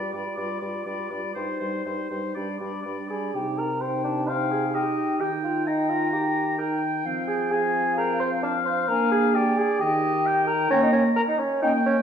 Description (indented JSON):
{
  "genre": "quick classical-period movement for wind quintet",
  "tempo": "130 BPM",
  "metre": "4/4",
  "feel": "rubato",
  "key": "C minor",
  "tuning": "A4 = 438 Hz",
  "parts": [
    { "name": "silver concert flute", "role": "melody", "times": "0.0-11.8 s", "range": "F5 to C6", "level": "-32 LUFS", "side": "left 6 dB", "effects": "none" },
    { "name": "clear oboe", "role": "second line", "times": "0.0-12.0 s", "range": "C5 to Bb5", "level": "-29 LUFS", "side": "left 2 dB", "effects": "none" },
    { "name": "clear French horn", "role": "accompaniment", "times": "0.0-12.0 s", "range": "C3 to Bb3", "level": "-30 LUFS", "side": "equal", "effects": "none" },
    { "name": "warm clarinet", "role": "accompaniment", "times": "0.0-11.8 s", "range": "C4 to F4", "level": "-32 LUFS", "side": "right 3 dB", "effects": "none" },
    { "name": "mellow bassoon", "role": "bass", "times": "0.1-12.0 s", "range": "G2 to C5", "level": "-26 LUFS", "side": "right 1 dB", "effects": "none" }
  ],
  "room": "wet recital hall reverb, RT60 1.5 s",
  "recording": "heard from further back in the room",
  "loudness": "-22 LUFS",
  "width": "side -8 dB against mid",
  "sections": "0.0-3.3 A section; 3.3-12.0 B section",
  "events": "none",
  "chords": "0.0 G7; 1.4 Cm/G; 2.4 G; 3.3 Cm; 5.2 Eb; 7.1 Fm; 8.9 Bb7; 9.8 Eb; 10.7 Gdim/Bb",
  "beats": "0.37 0.86 | 1.35 1.86 2.36 2.85 | 3.34 3.82 4.28 4.75 | 5.21 5.67 6.13 6.59 | 7.05 7.51 7.97 8.43 | 8.88 9.34 9.80 10.26 | 10.71 11.17 11.63"
}